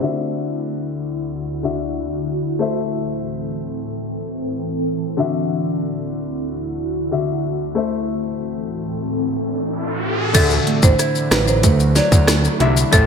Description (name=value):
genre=dancehall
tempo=93 BPM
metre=4/4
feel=straight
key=unclear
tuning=A4 = 440 Hz
part: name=clear baby grand piano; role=accompaniment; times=0.0-13.1 s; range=D3 to E5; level=-24 LUFS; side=left 6 dB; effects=none
part: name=ethereal airy pad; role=sustained chords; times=0.0-13.1 s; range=D2 to A4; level=-24 LUFS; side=equal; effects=ensemble chorus, built-in reverb, phaser, sidechain pumping
part: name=nylon-string guitar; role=arpeggios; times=0.0-0.6, 10.3-13.1 s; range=A2 to E4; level=-23 LUFS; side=right 6 dB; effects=none
part: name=riser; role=sound effects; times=9.1-10.3 s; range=none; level=-27 LUFS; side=right 1 dB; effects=none
part: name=marimba with medium mallets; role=melody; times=10.3-13.1 s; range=A4 to D5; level=-21 LUFS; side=equal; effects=none
part: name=fat analog bass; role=bass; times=10.3-13.1 s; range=A1 to D2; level=-18 LUFS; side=right 1 dB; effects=none
part: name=island pop drum kit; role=drums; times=10.3-13.1 s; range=crash cymbal, hi-hat, kick drum, rim click, snare drum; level=-17 LUFS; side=equal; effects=gated reverb
part: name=maracas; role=percussion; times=10.3-13.1 s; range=none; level=-25 LUFS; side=left 9 dB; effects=none
room=moderate plate reverb, RT60 2.0 s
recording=bright 1980s-style digital production, low-pass filter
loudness=-17 LUFS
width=side -6 dB against mid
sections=0.0-10.3 A section; 10.3-13.1 B section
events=filter sweep 0.0-10.3; riser 9.1-10.3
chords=0.0 Dadd9; 2.6 Am; 5.2 Dadd9; 7.8 Am; 10.3 Dadd9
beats=| 0.02 0.67 1.31 1.96 | 2.60 3.25 3.89 4.54 | 5.18 5.83 6.47 7.12 | 7.76 8.41 9.05 9.70 | 10.35 10.99 11.63 12.28 | 12.93